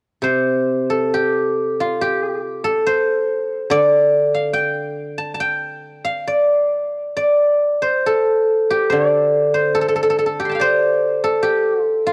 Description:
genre	chinese traditional, Chinese solo plucked strings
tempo	66-72 BPM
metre	2/4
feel	rubato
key	G shang mode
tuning	A4 = 440 Hz
part	guzheng	solo	0.2-12.1 s	C3 to C6	-18 LUFS	equal	none
room	light reverb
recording	home recording on cassette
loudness	-18 LUFS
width	mono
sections	0.2-12.1 A section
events	none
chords	none

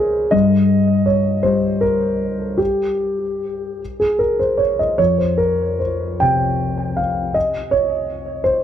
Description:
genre	neoclassical minimalist piano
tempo	51 BPM (dotted quarters)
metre	6/8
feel	uneven beats, rubato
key	F minor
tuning	A4 = 442 Hz
part	dark concert grand piano	solo	0.0-8.6 s	F2 to G5	-16 LUFS	equal	tape echo
room	moderate studio reverb, RT60 0.6 s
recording	dark, warm production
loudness	-16 LUFS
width	side -10 dB against mid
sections	0.0-8.6 A section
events	none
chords	0.3 N.C.; 5.0 F5

